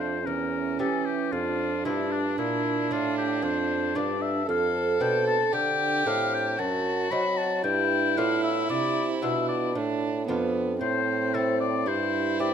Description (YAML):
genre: classical, baroque-style sonata movement with continuo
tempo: 57 BPM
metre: 3/4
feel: straight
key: unclear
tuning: A4 = 440 Hz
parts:
  - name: warm oboe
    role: melody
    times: 0.0-12.5 s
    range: D4 to B5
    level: -28 LUFS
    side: left 8 dB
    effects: none
  - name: warm violin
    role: second line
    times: 0.0-12.5 s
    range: B3 to A4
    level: -28 LUFS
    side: right 6 dB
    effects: none
  - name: lute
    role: accompaniment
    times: 0.0-12.5 s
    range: E2 to A4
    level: -33 LUFS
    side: left 2 dB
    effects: none
  - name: mellow bassoon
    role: bass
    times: 0.0-12.5 s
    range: E2 to F#3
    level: -30 LUFS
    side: right 1 dB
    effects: none
room: moderate recital hall reverb, RT60 1.5 s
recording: close, detailed microphones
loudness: -24 LUFS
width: side -8 dB against mid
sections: 0.0-12.5 A section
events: none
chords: 0.3 A7/E; 1.3 Dm/F; 4.5 Dm7/F; 6.6 F#dim7; 7.6 G7; 10.8 Am; 11.9 C/G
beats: 0.28 | 1.34 2.40 3.44 | 4.49 5.54 6.59 | 7.64 8.70 9.76 | 10.81 11.87